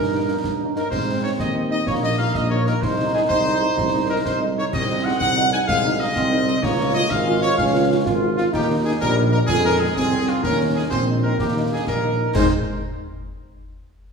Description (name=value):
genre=military-style march for wind band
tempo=126 BPM (dotted quarters)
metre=6/8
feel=straight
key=Ab major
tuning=A4 = 441 Hz
part: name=bright trumpet section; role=melody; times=0.0-12.5 s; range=F4 to Ab5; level=-23 LUFS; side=equal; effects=none
part: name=clear trombone section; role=sustained chords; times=0.0-12.5 s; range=G3 to F4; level=-25 LUFS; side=right 2 dB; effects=none
part: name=mellow tuba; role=bass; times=0.0-12.5 s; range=Ab1 to Ab2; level=-22 LUFS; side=right 1 dB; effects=none
part: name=mellow French horn section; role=accompaniment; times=0.1-12.5 s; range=F3 to F4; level=-29 LUFS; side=left 2 dB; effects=none
part: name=concert snare drum, concert bass drum and clash cymbals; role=drums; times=0.4-12.5 s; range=none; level=-28 LUFS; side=equal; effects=none
room=wet recital hall reverb, RT60 1.8 s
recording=recorded in a church or concert hall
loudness=-18 LUFS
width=side -5 dB against mid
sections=0.0-12.3 A section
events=none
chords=0.0 Eb7/G; 0.9 Ab; 1.9 Eb/Bb; 2.8 Ab/C; 4.7 Ab7/C; 6.6 Db; 8.5 Eb7; 9.5 Fm; 10.4 Eb7sus4; 11.4 Eb7; 12.3 Ab